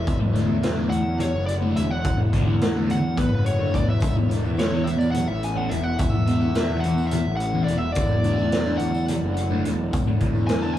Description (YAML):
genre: psychedelic rock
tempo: 213 BPM (eighths)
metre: 7/8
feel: straight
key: unclear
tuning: A4 = 440 Hz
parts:
  - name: fuzz lead guitar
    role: melody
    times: 0.0-10.8 s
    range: B4 to A5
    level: -29 LUFS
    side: left 2 dB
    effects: distortion, tape echo
  - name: tonewheel organ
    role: sustained chords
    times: 0.0-10.8 s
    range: E3 to E4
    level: -34 LUFS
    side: right 5 dB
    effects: fast rotary speaker
  - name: fuzz picked electric bass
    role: bass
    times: 0.0-10.7 s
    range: E1 to E2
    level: -25 LUFS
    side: equal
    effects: overdrive
  - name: raw garage drum kit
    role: drums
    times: 0.1-10.6 s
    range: hi-hat, kick drum, snare drum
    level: -25 LUFS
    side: equal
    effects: none
  - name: thick fuzz guitar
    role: riff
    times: 0.2-10.8 s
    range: E2 to D4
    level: -26 LUFS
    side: left 1 dB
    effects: distortion, phaser, tape echo
  - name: tambourine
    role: percussion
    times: 4.0-10.7 s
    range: none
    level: -51 LUFS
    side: right 8 dB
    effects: none
room: light reverb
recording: echo-heavy mix, small room ambience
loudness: -20 LUFS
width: side -12 dB against mid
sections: 0.0-10.8 A section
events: lead electric guitar solo 0.0-10.8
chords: 0.1 Dadd9/E; 4.0 E7sus4; 8.0 Dadd9/E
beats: | 0.07 0.35 0.63 0.92 1.20 1.48 1.76 | 2.05 2.33 2.61 2.89 3.17 3.46 3.74 | 4.02 4.30 4.58 4.87 5.15 5.43 5.71 | 5.99 6.27 6.55 6.83 7.12 7.40 7.68 | 7.96 8.24 8.52 8.80 9.08 9.36 9.64 | 9.92 10.20 10.48 10.76